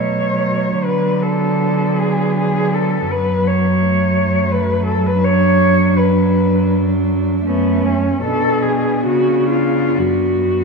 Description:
classical, lyrical piece for cello ensemble; 62-86 BPM; 3/4; rubato; A4 = 439 Hz
muted cello; melody; 0.0-10.6 s; B3 to C#5; -18 LUFS; left 2 dB
muted cello; second line; 0.0-10.6 s; A3 to D4; -21 LUFS; right 4 dB
muted cello; accompaniment; 0.0-10.6 s; F#3 to B3; -19 LUFS; equal
muted cello; bass; 0.0-10.6 s; F#2 to D3; -20 LUFS; equal
moderate scoring stage reverb, RT60 1.9 s; -14 LUFS; side -4 dB against mid
0.0-10.6 A section
0.0 B5; 0.8 Bm/D; 3.1 F#m; 8.2 G#dim/B; 9.1 C#7b9; 10.0 N.C.

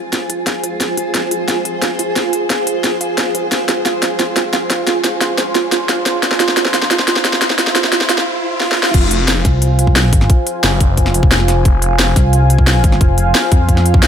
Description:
dark technical drum and bass; 177 BPM; 4/4; straight; F minor; A4 = 440 Hz
dark analog pad; sustained chords; 0.0-14.1 s; F4 to C6; -20 LUFS; right 2 dB; chorus, sidechain pumping
warbly dusty pluck; arpeggios; 0.0-8.1 s; F4 to F5; -23 LUFS; right 6 dB; chorus, sidechain pumping, ping-pong delay
riser; sound effects; 1.7-8.9 s; -26 LUFS; equal
granular cloud pad; texture; 0.0-8.3 s; F4 to Ab5; -21 LUFS; equal; built-in reverb, sidechain pumping
drum and bass drum kit; drums; 0.1-14.1 s; crash cymbal, hi-hat, snare drum; -16 LUFS; left 1 dB
phased detuned saw bass; bass; 8.9-14.1 s; F1 to C2; -15 LUFS; equal; phaser, tube saturation, sidechain pumping
electronic kick drum; drums; 8.9-14.0 s; -12 LUFS; equal
pulsing pluck wobble bass; bass; 9.4-14.0 s; F1 to F2; -13 LUFS; equal; chorus
light reverb; high-pass filter; -12 LUFS; side -8 dB against mid
0.0-8.9 A section; 8.9-14.1 B section
build-up 0.0-8.9; drum fill 0.0-8.3, 8.6-8.9; filter sweep on synth arpeggio sound 0.0-8.9; break 8.3-8.9; drop 8.9-14.1
0.0 Fm

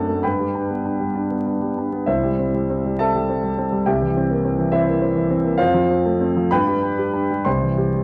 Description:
classical, virtuoso piano study; 63-70 BPM (dotted quarters); 6/8; rubato; C major; A4 = 444 Hz
clear concert grand piano; solo; 0.0-8.0 s; C2 to C6; -20 LUFS; equal
moderate recital hall reverb, RT60 1.6 s; dark, warm production, vinyl crackle; -20 LUFS; mono
0.0-8.0 A section
0.2 G; 2.1 C; 3.9 C7; 5.6 F; 6.5 G; 7.5 C

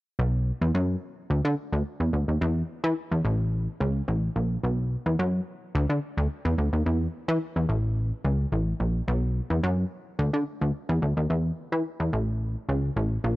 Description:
funk; 108 BPM; 4/4; straight; B minor; A4 = 441 Hz
plucky analog bass; solo; 0.2-13.4 s; A1 to E3; -24 LUFS; equal
little or no reverb; dry, close 1970s-style studio recording; -24 LUFS; side -18 dB against mid
0.2-13.4 A section

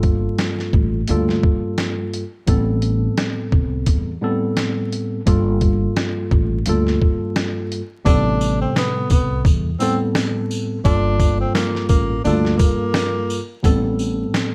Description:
hip hop, boom-bap hip-hop; 86 BPM; 4/4; swing 58% on 16ths; A phrygian; A4 = 441 Hz
mellow tine electric piano; accompaniment; 0.0-14.5 s; G2 to A4; -24 LUFS; equal; high-pass filter, low-pass filter
upright bass; bass; 0.0-14.2 s; G1 to E2; -24 LUFS; equal
trip hop sampler-style drum kit; drums; 0.0-14.5 s; hi-hat, kick drum, snare drum; -21 LUFS; equal
breathy tenor saxophone; melody; 8.1-13.6 s; Bb3 to D4; -26 LUFS; equal; high-pass filter, low-pass filter, slapback echo
sleigh bells; percussion; 8.1-14.5 s; -37 LUFS; equal
small room ambience; vinyl crackle; -19 LUFS; mono
0.0-8.1 A section; 8.1-14.5 B section
hi-hats muted 8.1-14.5
0.0 Gm9; 2.5 Am9; 5.3 Gm9; 8.1 Am9; 10.8 Gm9; 13.6 Am9

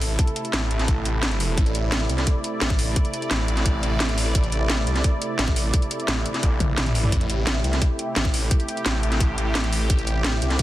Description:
dark technical drum and bass; 173 BPM; 4/4; straight; A minor; A4 = 440 Hz
sweeping resonant pad; sustained chords; 0.0-10.6 s; C3 to D5; -28 LUFS; right 1 dB; chorus, sidechain pumping
snarling distorted saw bass; bass; 0.0-10.6 s; A1 to C2; -24 LUFS; equal; distortion, tube saturation, sidechain pumping
drum and bass drum kit; drums; 0.0-10.6 s; hi-hat, snare drum, toms; -26 LUFS; equal
electronic kick drum; drums; 0.2-10.6 s; -21 LUFS; equal
light reverb, digital ambience; dense, heavily limited modern master; -20 LUFS; side -15 dB against mid
0.0-10.6 A section
drum fill 6.6-7.1
0.0 Am

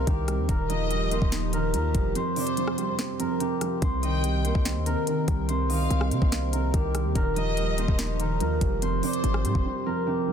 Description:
hip hop, trap; 144 BPM; 4/4; half-time; C minor; A4 = 440 Hz
concert harp; melody; 0.0-10.3 s; G4 to Eb5; -30 LUFS; equal; ping-pong delay
felt-muted upright piano; accompaniment; 0.0-10.3 s; F2 to Eb4; -31 LUFS; right 5 dB
hollow soft pad; sustained chords; 0.0-10.3 s; Eb3 to Bb4; -33 LUFS; equal; ensemble chorus
hard-hitting 808-style bass; bass; 0.0-9.7 s; D1 to C3; -27 LUFS; equal
trap drum kit; drums; 0.1-9.6 s; hi-hat, kick drum, rim click, snare drum; -28 LUFS; equal
rich symphonic violin section; second line; 0.7-9.6 s; C5 to G5; -37 LUFS; left 2 dB; ping-pong delay
studio reverb; dense, heavily limited modern master, faint mains hum; -23 LUFS; side -8 dB against mid
0.0-10.3 A section
kick muted 2.2-3.8; break 9.7-10.3
0.5 Ebadd9; 2.2 Fsus2; 3.8 Cm7; 7.2 Ebadd9; 8.8 Fsus2

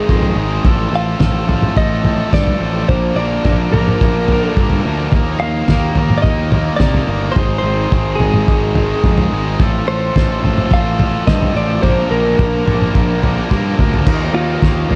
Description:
indie rock; 107 BPM; 4/4; straight; F mixolydian; A4 = 443 Hz
direct-recorded clean electric guitar; melody; 0.0-15.0 s; F4 to F5; -23 LUFS; equal; subtle chorus, slapback echo
overdriven electric guitar; riff; 0.0-15.0 s; Ab2 to Bb4; -22 LUFS; equal
fuzz picked electric bass; bass; 0.1-15.0 s; G1 to C3; -21 LUFS; equal; overdrive
cloth-damped thuddy drum kit; drums; 0.1-15.0 s; crash cymbal, kick drum, snare drum, toms; -18 LUFS; equal
crunchy overdriven guitar; riff; 14.1-15.0 s; Eb3 to F4; -28 LUFS; equal; lush chorus, slapback echo
light reverb; dark, warm production; -15 LUFS; mono
0.0-14.1 A section
drum fill 13.5-14.1
0.0 Ab; 0.6 F/A; 2.9 Bb; 5.1 Ebsus2; 7.4 Ab; 9.6 F/A; 11.8 Bb; 14.1 Ebsus2

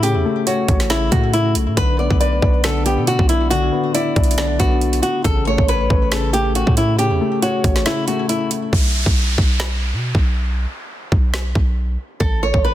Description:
hip hop, trap; 138 BPM; 4/4; half-time; A4 = 441 Hz
flamenco guitar; melody; 0.0-8.5, 12.2-12.7 s; D4 to D5; -20 LUFS; equal; ping-pong delay
dark concert grand piano; accompaniment; 0.0-8.7 s; C#3 to D5; -22 LUFS; left 4 dB
warm 808-style bass; bass; 0.0-12.7 s; A1 to B2; -20 LUFS; equal
trap drum kit; drums; 0.0-12.6 s; hi-hat, kick drum, snare drum; -19 LUFS; equal
downlifter; sound effects; 8.7-12.2 s; -26 LUFS; right 1 dB
digital ambience; dense, heavily limited modern master; -15 LUFS; side -13 dB against mid
0.0-8.7 A section; 8.7-12.7 B section
break 7.9-8.7; hi-hats muted 8.7-12.7
0.0 A; 1.8 Bm; 5.2 A; 8.7 N.C.; 12.2 A5

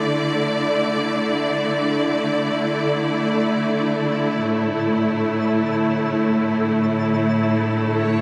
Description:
ambient; free time; A4 = 440 Hz
bright studio string section; sustained chords; 0.0-8.2 s; A2 to D5; -22 LUFS; equal
bowed-like drone; drone; 0.0-8.2 s; D3 to A3; -27 LUFS; equal; built-in reverb
twinkling granular texture; texture; 0.3-8.2 s; A4 to A5; -36 LUFS; equal; built-in reverb
wet huge ambient reverb, RT60 8.3 s; -21 LUFS; mono
0.0-8.2 A section
fade-in on synth texture 0.0-8.2
0.0 Dsus2; 4.4 A5

